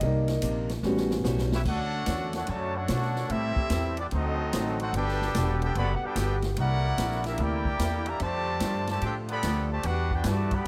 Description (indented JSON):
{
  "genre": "jazz, big band swing",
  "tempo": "147 BPM",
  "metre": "4/4",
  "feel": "swing 66% on 8ths",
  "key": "D major",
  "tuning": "A4 = 440 Hz",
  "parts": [
    { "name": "picked swing-style acoustic guitar", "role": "accompaniment", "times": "0.0-10.7 s", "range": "A2 to A4", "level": "-39 LUFS", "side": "equal", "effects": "none" },
    { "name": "warm grand piano", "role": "accompaniment", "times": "0.0-1.6 s", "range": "G3 to Eb5", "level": "-32 LUFS", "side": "equal", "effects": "none" },
    { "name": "upright bass", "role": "bass", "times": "0.0-10.7 s", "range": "E1 to B2", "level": "-31 LUFS", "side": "equal", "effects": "none" },
    { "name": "swinging big-band drum kit", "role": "drums", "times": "0.0-10.7 s", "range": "crash cymbal, hi-hat, kick drum, ride cymbal, snare drum", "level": "-36 LUFS", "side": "equal", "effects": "none" },
    { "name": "mellow trumpet section", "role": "melody", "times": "1.5-10.7 s", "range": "B3 to B5", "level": "-34 LUFS", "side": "equal", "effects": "none" },
    { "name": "muted trombone section", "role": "second line", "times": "1.5-10.7 s", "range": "C3 to G4", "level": "-39 LUFS", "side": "equal", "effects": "none" },
    { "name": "clear trombone section", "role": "sustained chords", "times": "1.7-10.7 s", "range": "D3 to C#5", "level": "-42 LUFS", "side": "equal", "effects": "none" }
  ],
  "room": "light reverb",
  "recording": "close, detailed microphones",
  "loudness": "-28 LUFS",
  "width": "mono",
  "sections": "0.0-1.7 A section; 1.7-10.7 B section",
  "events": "grand piano solo 0.0-1.7; drum fill 0.8-1.7",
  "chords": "0.0 Cm9; 0.8 A13; 1.7 Dmaj7; 3.3 Am7; 4.1 D7b9; 4.9 Gmaj9; 6.6 C13; 8.2 F69; 9.8 Em9",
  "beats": "| 0.02 0.43 0.84 1.26 | 1.67 2.08 2.49 2.90 | 3.31 3.72 4.13 4.54 | 4.95 5.35 5.76 6.17 | 6.58 6.99 7.39 7.80 | 8.21 8.62 9.03 9.43 | 9.84 10.25 10.66"
}